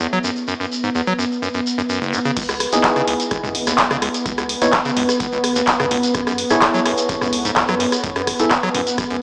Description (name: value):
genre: acid house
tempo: 127 BPM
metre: 4/4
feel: straight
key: C# minor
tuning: A4 = 439 Hz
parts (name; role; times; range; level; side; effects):
- lush unison pad; sustained chords; 0.0-9.2 s; B3; -25 LUFS; equal; chorus, sidechain pumping
- acid bass, square; riff; 0.0-9.2 s; F#1 to F#3; -26 LUFS; equal; tube saturation, sidechain pumping, dub echo
- percussive organ stab; stabs; 0.0-8.5 s; B3 to E5; -25 LUFS; equal; lush chorus, dub echo
- shekere; percussion; 0.0-9.2 s; none; -30 LUFS; equal; none
- warm sub bass; bass; 2.4-9.2 s; F#1 to F#2; -40 LUFS; equal; tube saturation, sidechain pumping
- electronic kick drum; drums; 2.4-9.1 s; none; -33 LUFS; equal; none
- punchy analog drum machine; drums; 2.4-9.2 s; crash cymbal, handclaps, hi-hat, rim click, toms; -22 LUFS; equal; low-pass filter on hats, low-pass filter on cymbals, low-pass filter on snare, low-pass filter on toms, low-pass filter on room
room: wet studio reverb, RT60 0.5 s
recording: small speaker sound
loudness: -19 LUFS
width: mono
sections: 0.0-2.4 A section; 2.4-9.2 B section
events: filter sweep on analog synth pad 0.0-2.4; drop 2.4-9.2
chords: 0.0 F#m7; 2.4 C#m7; 6.1 F#m7